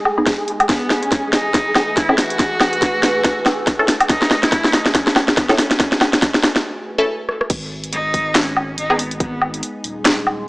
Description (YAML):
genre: deep dubstep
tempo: 141 BPM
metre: 4/4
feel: swing 58% on 16ths, half-time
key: G# phrygian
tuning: A4 = 440 Hz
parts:
  - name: clear cello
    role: melody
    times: 0.0-9.6 s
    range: B3 to F#4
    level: -22 LUFS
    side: equal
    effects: dub echo
  - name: overtone-sweeping drone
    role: sustained chords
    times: 0.0-10.5 s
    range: E3 to D#5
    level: -29 LUFS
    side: right 1 dB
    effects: chorus, built-in reverb
  - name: flickering grainy texture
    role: texture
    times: 0.0-6.6 s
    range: G#4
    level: -27 LUFS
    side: equal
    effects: built-in reverb
  - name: garage drum kit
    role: drums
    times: 0.1-10.4 s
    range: crash cymbal, handclaps, hi-hat, rim click, snare drum, woodblock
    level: -16 LUFS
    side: equal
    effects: none
  - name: filtered dub chord stab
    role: stabs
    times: 0.2-8.9 s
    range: B3 to A4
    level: -21 LUFS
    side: equal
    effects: phaser, dub echo
  - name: electronic kick drum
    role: drums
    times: 0.3-9.3 s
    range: none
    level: -23 LUFS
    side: equal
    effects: none
  - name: saturated sub bass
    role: bass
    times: 7.5-10.5 s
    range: D#1 to G#1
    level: -30 LUFS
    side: equal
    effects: none
room: moderate echo chamber reverb, RT60 1.5 s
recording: dry, gritty hardware recording, small speaker sound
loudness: -15 LUFS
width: side -23 dB against mid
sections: 0.0-7.5 A section; 7.5-10.5 B section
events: build-up 0.0-7.5; drum fill 0.0-6.6, 7.3; filter sweep on synth stab 0.0-7.5; break 6.6-7.5; drop 7.5-10.5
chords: 0.0 G#m; 0.7 A; 7.5 G#m